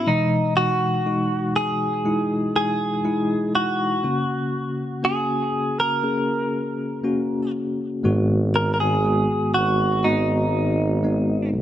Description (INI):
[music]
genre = pop ballad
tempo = 60 BPM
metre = 4/4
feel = straight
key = G# minor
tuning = A4 = 442 Hz
[part]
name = direct-recorded clean electric guitar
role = melody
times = 0.0-11.5 s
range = D#4 to A#4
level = -23 LUFS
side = right 1 dB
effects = wide subtle chorus
[part]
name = bright tine electric piano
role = accompaniment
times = 0.0-11.6 s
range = G#2 to G#4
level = -23 LUFS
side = left 1 dB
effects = medium tremolo
[part]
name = breathy tuba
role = bass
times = 8.0-11.6 s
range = G#1 to B1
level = -24 LUFS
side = right 1 dB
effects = none
[sound]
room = light reverb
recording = none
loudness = -20 LUFS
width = side -11 dB against mid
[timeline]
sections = 0.0-11.6 A section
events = none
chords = 0.1 Emaj7; 4.0 F#; 8.0 G#m7